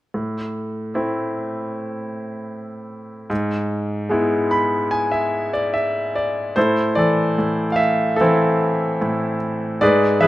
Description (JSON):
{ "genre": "classical, lyrical solo piano", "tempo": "74 BPM", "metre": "4/4", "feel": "rubato", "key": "A harmonic minor", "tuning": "A4 = 439 Hz", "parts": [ { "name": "bright baby grand piano", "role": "solo", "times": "0.1-10.3 s", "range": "G#2 to B5", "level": "-18 LUFS", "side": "equal", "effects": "none" } ], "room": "light reverb", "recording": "close, detailed microphones", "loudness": "-18 LUFS", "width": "side -15 dB against mid", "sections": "0.1-6.6 A section; 6.6-10.3 B section", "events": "grand piano fill 4.1-6.6", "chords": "0.1 Am; 3.3 E/G#; 6.6 Am" }